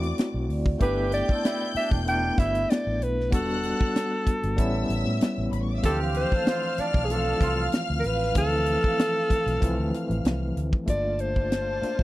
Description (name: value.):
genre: lush 1970s-style soul.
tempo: 95 BPM.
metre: 4/4.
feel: swing 54% on 16ths.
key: D dorian.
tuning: A4 = 440 Hz.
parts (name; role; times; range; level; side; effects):
warm studio string section; second line; 0.0-12.0 s; F4 to G6; -34 LUFS; equal; none.
overdriven tine electric piano; accompaniment; 0.0-12.0 s; E3 to F#4; -30 LUFS; left 1 dB; fast tremolo.
vintage muted fingered electric bass; bass; 0.0-12.0 s; E1 to A2; -29 LUFS; equal; none.
tight funk drum kit; drums; 0.0-12.0 s; hi-hat, kick drum, snare drum; -24 LUFS; equal; none.
vibraphone with medium mallets; texture; 0.5-6.0 s; C#5 to D5; -39 LUFS; right 7 dB; stereo widening.
breathy alto saxophone; melody; 0.8-12.0 s; G#4 to G5; -27 LUFS; equal; none.
mellow horn section; stabs; 0.8-7.7 s; A2 to A4; -33 LUFS; right 6 dB; none.
room: small room ambience.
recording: dry, close 1970s-style studio recording.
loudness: -23 LUFS.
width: side -16 dB against mid.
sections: 0.0-10.9 A section; 10.9-12.0 B section.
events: none.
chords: 0.0 D7; 0.8 G6; 3.3 Em7; 4.6 A7; 5.8 Dm7; 10.9 Gm9.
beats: 0.17 | 0.80 1.43 2.06 2.69 | 3.32 3.95 4.58 5.21 | 5.84 6.47 7.10 7.73 | 8.36 8.99 9.62 10.25 | 10.88 11.51.